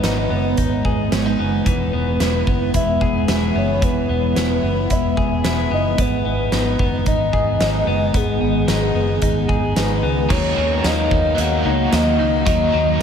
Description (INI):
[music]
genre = dream pop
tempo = 111 BPM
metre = 4/4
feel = straight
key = G# minor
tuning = A4 = 441 Hz
[part]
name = soft octave-layered synth lead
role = melody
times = 0.0-13.0 s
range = G#4 to F#5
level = -23 LUFS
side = left 2 dB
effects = chorus, tremolo, tape echo
[part]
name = ethereal airy pad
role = sustained chords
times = 0.0-13.0 s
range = D#3 to B3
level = -23 LUFS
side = right 1 dB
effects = ensemble chorus, built-in reverb, phaser
[part]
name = clean electric guitar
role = arpeggios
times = 0.0-13.0 s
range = E3 to G#4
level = -24 LUFS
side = left 3 dB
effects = wide subtle chorus, tape echo
[part]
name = vintage muted fingered electric bass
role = bass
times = 0.0-13.0 s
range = E1 to D#2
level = -23 LUFS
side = right 1 dB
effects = none
[part]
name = huge arena drum kit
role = drums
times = 0.0-12.6 s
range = crash cymbal, hi-hat, kick drum, snare drum, tambourine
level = -22 LUFS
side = right 1 dB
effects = none
[part]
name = overdriven electric guitar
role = accompaniment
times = 10.3-13.0 s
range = D#3 to A#4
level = -25 LUFS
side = right 2 dB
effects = tremolo, lush chorus
[sound]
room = wet huge ambient reverb, RT60 7.9 s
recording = dreamy mix soaked in reverb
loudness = -16 LUFS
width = side -7 dB against mid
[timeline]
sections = 0.0-10.3 A section; 10.3-13.0 B section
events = none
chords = 0.0 G#m; 1.7 E; 6.0 G#m; 10.3 D#m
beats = 0.04 0.58 1.12 | 1.66 2.20 2.74 3.28 | 3.82 4.36 4.90 5.44 | 5.98 6.52 7.06 7.61 | 8.14 8.69 9.23 9.77 | 10.31 10.85 11.39 11.93 | 12.47 13.01